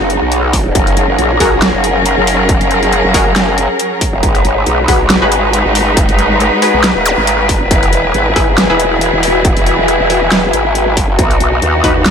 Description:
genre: heavy wobble dubstep.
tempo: 138 BPM.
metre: 4/4.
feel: swing 55% on 16ths, half-time.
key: G# minor.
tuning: A4 = 438 Hz.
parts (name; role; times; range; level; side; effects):
rich studio string section; sustained chords; 0.0-12.1 s; E3 to B4; -15 LUFS; equal; sidechain pumping.
growl bass; bass; 0.0-12.1 s; D#1 to D#2; -14 LUFS; equal; chorus, overdrive.
ethereal airy pad; texture; 0.0-12.1 s; D#4 to A#5; -18 LUFS; left 1 dB; ensemble chorus, built-in reverb, tremolo, sidechain pumping.
dubstep drum kit; drums; 0.1-12.1 s; hi-hat, snare drum; -16 LUFS; equal; none.
electronic kick drum; drums; 0.5-11.9 s; none; -14 LUFS; equal; distortion.
orchestra-hit-like synth stab; stabs; 1.4-8.8, 11.8-11.9 s; D#4 to B4; -17 LUFS; left 2 dB; built-in reverb, ping-pong delay.
zap; sound effects; 7.1-7.2 s; none; -18 LUFS; equal; none.
room: light reverb.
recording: none.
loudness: -9 LUFS.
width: side -7 dB against mid.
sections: 0.0-12.1 A section.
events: none.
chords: 0.0 B; 0.8 F#add9; 4.2 G#m7; 7.7 E; 11.2 B.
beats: 0.32 | 0.75 1.19 1.62 2.06 | 2.49 2.93 3.36 3.79 | 4.23 4.67 5.10 5.53 | 5.97 6.40 6.84 7.27 | 7.71 8.14 8.58 9.01 | 9.45 9.88 10.32 10.75 | 11.19 11.62 12.06.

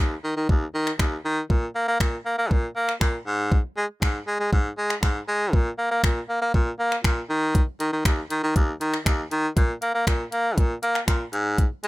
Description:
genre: dance-pop.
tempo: 119 BPM.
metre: 4/4.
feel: straight.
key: unclear.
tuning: A4 = 440 Hz.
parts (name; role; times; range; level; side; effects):
breathy baritone saxophone; bass; 0.0-11.9 s; Eb2 to Bb3; -24 LUFS; equal; sidechain pumping.
smooth R&B drum kit; drums; 0.5-11.9 s; finger snaps, hi-hat, kick drum; -21 LUFS; equal; none.
room: little or no reverb.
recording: none.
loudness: -21 LUFS.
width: side -19 dB against mid.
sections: 0.0-11.9 A section.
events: none.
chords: none.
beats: 0.49 1.00 | 1.50 2.00 2.51 3.01 | 3.52 4.02 4.53 5.03 | 5.53 6.04 6.54 7.05 | 7.55 8.05 8.56 9.06 | 9.57 10.07 10.58 11.08 | 11.58.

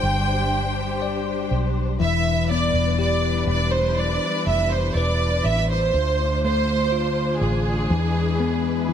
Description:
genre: pop ballad.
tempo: 61 BPM.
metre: 4/4.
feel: straight.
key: unclear.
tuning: A4 = 441 Hz.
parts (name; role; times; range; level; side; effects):
warm studio violin section; melody; 0.0-8.9 s; G#4 to G5; -24 LUFS; right 2 dB; none.
bell-like tine electric piano; accompaniment; 0.0-8.9 s; D3 to D5; -25 LUFS; moving between left 9 dB and right 1 dB; auto-pan.
warm studio string section; sustained chords; 0.0-8.9 s; G3 to C5; -30 LUFS; equal; none.
vintage muted fingered electric bass; bass; 0.0-8.9 s; E1 to E2; -24 LUFS; right 1 dB; none.
room: light reverb, studio ambience.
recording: none.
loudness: -19 LUFS.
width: side -9 dB against mid.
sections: 0.0-8.9 A section.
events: none.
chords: 0.0 Gsus4; 2.0 Em7; 5.9 Dm7; 7.9 E7.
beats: 0.03 1.02 | 2.00 2.98 3.97 4.95 | 5.93 6.92 7.90 8.88.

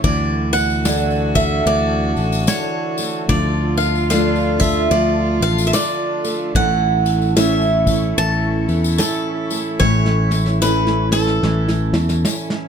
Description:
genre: acoustic folk duo or small band.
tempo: 74 BPM.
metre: 4/4.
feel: swing 62% on 8ths.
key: A major.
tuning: A4 = 440 Hz.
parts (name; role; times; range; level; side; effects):
picked swing-style acoustic guitar; melody; 0.0-12.7 s; A4 to A5; -21 LUFS; right 1 dB; none.
warm cello; second line; 0.0-12.7 s; E4 to F#4; -26 LUFS; right 3 dB; none.
nylon-string guitar; accompaniment; 0.0-12.7 s; A2 to A4; -26 LUFS; left 2 dB; none.
fingerpicked twelve-string acoustic guitar; arpeggios; 0.0-12.7 s; E3 to D4; -25 LUFS; right 4 dB; none.
fingered electric bass; bass; 0.0-12.2 s; A1 to E2; -19 LUFS; left 1 dB; none.
soft brush drum kit; drums; 0.0-12.7 s; kick drum, ride cymbal, snare drum; -24 LUFS; equal; none.
tambourine; percussion; 0.0-12.5 s; none; -28 LUFS; left 7 dB; none.
dark analog pad; sustained chords; 0.7-12.7 s; F4 to C#6; -31 LUFS; left 7 dB; chorus.
room: little or no reverb.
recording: close, detailed microphones.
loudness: -15 LUFS.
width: side -7 dB against mid.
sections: 0.0-12.7 A section.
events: drum fill 9.8-12.7.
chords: 0.0 Dsus2; 3.3 Dm; 6.6 A.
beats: | 0.04 0.85 1.67 2.48 | 3.30 4.11 4.92 5.74 | 6.55 7.37 8.18 8.99 | 9.81 10.62 11.43 12.25.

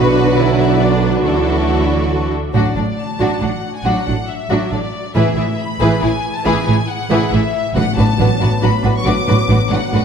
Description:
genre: cinematic.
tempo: 138 BPM.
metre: 3/4.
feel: straight.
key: unclear.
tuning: A4 = 440 Hz.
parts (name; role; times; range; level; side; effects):
rich symphonic violin section; melody; 0.0-10.0 s; A4 to D6; -23 LUFS; left 5 dB; none.
rich symphonic violin section; second line; 0.0-10.0 s; D4 to B4; -23 LUFS; left 4 dB; none.
warm symphonic viola section; accompaniment; 0.0-10.0 s; D3 to E4; -21 LUFS; right 1 dB; none.
dark symphonic string section; sustained chords; 0.0-2.6 s; D4 to E5; -21 LUFS; equal; none.
mellow French horn section; sustained chords; 0.0-10.0 s; F#3 to E4; -24 LUFS; left 4 dB; none.
warm trombone section; sustained chords; 0.0-2.3 s; B2 to F#3; -22 LUFS; right 4 dB; none.
rich symphonic cello section; bass; 0.0-10.0 s; A2 to F#4; -22 LUFS; right 2 dB; none.
warm studio double bass section; bass; 0.0-10.0 s; A1 to D2; -18 LUFS; right 4 dB; none.
timpani; percussion; 2.5-5.8, 7.8-8.4 s; A2; -25 LUFS; left 2 dB; none.
room: moderate concert hall reverb, RT60 2.2 s.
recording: none.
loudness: -13 LUFS.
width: side -7 dB against mid.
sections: 0.0-2.5 A section; 2.5-10.0 B section.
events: none.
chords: 0.0 Bm; 1.2 Dadd9; 2.5 D/A; 5.2 E/A; 7.8 Bm/A.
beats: 0.37 0.81 | 1.24 1.68 2.11 | 2.55 2.98 3.42 | 3.85 4.28 4.72 | 5.15 5.59 6.02 | 6.46 6.89 7.32 | 7.76 8.19 8.62 | 9.06 9.49 9.93.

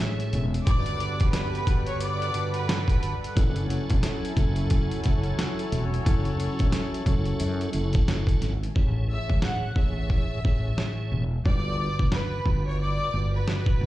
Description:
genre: hip hop, boom-bap hip-hop.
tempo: 89 BPM.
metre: 4/4.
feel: swing 59% on 16ths.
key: unclear.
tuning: A4 = 438 Hz.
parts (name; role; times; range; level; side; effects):
clear chamber violin section; melody; 0.0-3.3, 9.1-13.9 s; B4 to F#6; -32 LUFS; equal; plate reverb, tape echo.
tonewheel organ; accompaniment; 0.0-13.9 s; G2 to C#5; -30 LUFS; right 2 dB; overdrive, chorus vibrato, cassette tape.
lush unison pad; sustained chords; 0.0-8.7 s; F#3 to G#5; -36 LUFS; left 1 dB; chorus, plate reverb.
mellow horn section; stabs; 0.0-8.4 s; G#3 to C#5; -38 LUFS; left 4 dB; plate reverb, tape echo.
dusty soul sampler-style drum kit; drums; 0.2-13.8 s; hi-hat, kick drum, snare drum; -25 LUFS; equal; overdrive.
fretless electric bass; bass; 0.3-13.9 s; E1 to F#2; -27 LUFS; equal; none.
room: light reverb.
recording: played on a big sound system in a bare room, large studio reverb.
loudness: -23 LUFS.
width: side -16 dB against mid.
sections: 0.0-8.8 A section; 8.8-13.9 B section.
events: hi-hats muted 8.8-13.9.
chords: 0.0 F#m7 (rootless); 0.7 Gmaj7; 3.4 F#m7; 11.5 Gmaj7.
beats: | 0.67 1.34 2.01 2.69 | 3.36 4.04 4.71 5.38 | 6.06 6.73 7.41 8.08 | 8.76 9.43 10.10 10.78 | 11.45 12.13 12.80 13.47.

